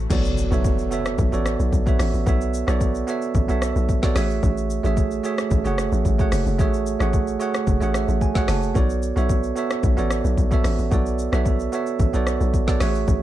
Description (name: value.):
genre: amapiano.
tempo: 111 BPM.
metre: 4/4.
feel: straight.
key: B dorian.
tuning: A4 = 440 Hz.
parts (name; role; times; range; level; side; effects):
bell-like tine electric piano; accompaniment; 0.0-13.2 s; A3 to A5; -24 LUFS; right 5 dB; none.
hollow log drum bass; bass; 0.1-13.2 s; F#1 to B1; -23 LUFS; left 1 dB; none.
deep house drum kit; drums; 0.1-13.2 s; crash cymbal, hi-hat, kick drum, rim click, shaker, snare drum; -23 LUFS; left 1 dB; vintage 12-bit sampler grit.
impact; sound effects; 0.1-2.3 s; none; -30 LUFS; left 2 dB; none.
room: digital ambience.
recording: dark, warm production.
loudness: -19 LUFS.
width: side -13 dB against mid.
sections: 0.1-13.2 A section.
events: drop 0.1-13.2; impact 0.1-2.3; tine electric piano fill 7.7-8.8.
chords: 0.1 Bm9; 4.2 F#m9; 8.8 Bm9.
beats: | 0.10 0.65 1.19 1.73 | 2.27 2.81 3.35 3.89 | 4.43 4.97 5.51 6.05 | 6.59 7.13 7.67 8.21 | 8.75 9.29 9.84 10.38 | 10.92 11.46 12.00 12.54 | 13.08.